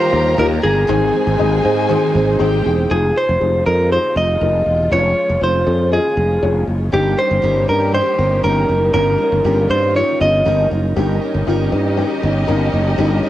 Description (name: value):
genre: pop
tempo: 119 BPM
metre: 4/4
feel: straight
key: unclear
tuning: A4 = 442 Hz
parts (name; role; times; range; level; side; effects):
- direct-recorded clean electric guitar; melody; 0.0-10.7 s; G4 to Eb5; -17 LUFS; right 1 dB; none
- warm studio violin section; second line; 0.0-2.9, 11.0-13.3 s; Eb4 to Bb5; -24 LUFS; equal; cassette tape
- dark upright piano; accompaniment; 0.0-13.3 s; G2 to Eb5; -23 LUFS; left 8 dB; cassette tape
- warm studio string section; sustained chords; 0.0-13.3 s; C3 to C5; -28 LUFS; left 1 dB; cassette tape
- picked steel-string acoustic guitar; riff; 0.0-2.9, 6.9-13.3 s; Ab2 to Bb4; -23 LUFS; right 6 dB; cassette tape
- sustaining fretless electric bass; bass; 0.1-13.2 s; Fb1 to Ab2; -18 LUFS; equal; wide subtle chorus
room: moderate studio reverb, RT60 0.6 s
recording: home recording on cassette, lossy compression artefacts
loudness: -13 LUFS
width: side -13 dB against mid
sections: 0.0-2.9 A section; 2.9-11.0 B section; 11.0-13.3 C section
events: none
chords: 0.0 Ebadd9; 0.9 Ab; 2.9 Fm7; 4.9 Dbmaj7/F; 6.9 Eb7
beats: 0.38 | 0.88 1.38 1.89 2.39 | 2.90 3.40 3.90 4.41 | 4.91 5.42 5.92 6.43 | 6.93 7.43 7.94 8.44 | 8.95 9.45 9.96 10.46 | 10.96 11.47 11.97 12.48 | 12.98